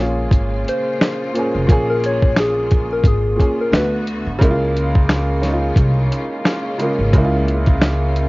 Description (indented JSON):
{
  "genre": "lo-fi hip hop",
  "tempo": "88 BPM",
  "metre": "4/4",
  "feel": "swing 56% on 16ths",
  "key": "Bb minor",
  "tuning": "A4 = 439 Hz",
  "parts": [
    { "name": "soft struck synth lead", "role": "melody", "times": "0.0-4.1 s", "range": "Ab4 to Db5", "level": "-21 LUFS", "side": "left 1 dB", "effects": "chorus" },
    { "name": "clear upright piano", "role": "accompaniment", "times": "0.0-8.3 s", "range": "Bb2 to Ab4", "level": "-21 LUFS", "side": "equal", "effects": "cassette tape" },
    { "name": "bright studio string section", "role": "sustained chords", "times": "0.0-8.3 s", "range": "Db3 to F#4", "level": "-30 LUFS", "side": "equal", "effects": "none" },
    { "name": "upright bass", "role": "bass", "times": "0.0-8.3 s", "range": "F1 to D2", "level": "-20 LUFS", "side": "equal", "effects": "none" },
    { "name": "dusty soul sampler-style drum kit", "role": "drums", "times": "0.3-8.3 s", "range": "finger snaps, hi-hat, kick drum, snare drum", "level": "-15 LUFS", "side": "equal", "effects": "none" }
  ],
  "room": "light reverb",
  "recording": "worn, warbling old tape, cassette tape, vinyl crackle, warbly pitch drift, nothing above 7.5 kHz",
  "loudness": "-14 LUFS",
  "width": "side -22 dB against mid",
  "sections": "0.0-8.3 A section",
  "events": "none",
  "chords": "0.0 Bbm7; 3.7 D6; 4.4 Db6",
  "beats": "0.32 1.00 | 1.68 2.36 3.05 3.73 | 4.41 5.09 5.77 6.46 | 7.14 7.82"
}